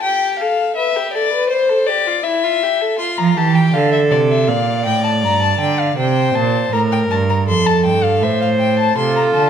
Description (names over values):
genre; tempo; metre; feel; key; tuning
classical, baroque-style fugue for string quartet; 80 BPM; 4/4; straight; F major; A4 = 440 Hz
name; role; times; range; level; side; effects
rich violin; melody; 0.0-9.5 s; C5 to C6; -18 LUFS; left 6 dB; none
rich violin; second line; 0.0-9.5 s; E4 to D5; -19 LUFS; equal; none
rich cello; bass; 3.2-9.5 s; F2 to F3; -16 LUFS; right 5 dB; none
rich viola; accompaniment; 9.0-9.5 s; F4; -20 LUFS; right 4 dB; none
room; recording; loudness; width
wet recital hall reverb, RT60 1.6 s; minimal, uncompressed stereo recording; -14 LUFS; side -8 dB against mid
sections
0.0-9.0 A section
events
none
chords
0.0 G7; 1.5 C; 3.0 F; 4.5 Gm; 6.0 C5; 7.5 F; 9.0 Am/C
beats
| 0.03 0.77 1.51 2.25 | 3.00 3.74 4.49 5.23 | 5.98 6.73 7.48 8.23 | 8.98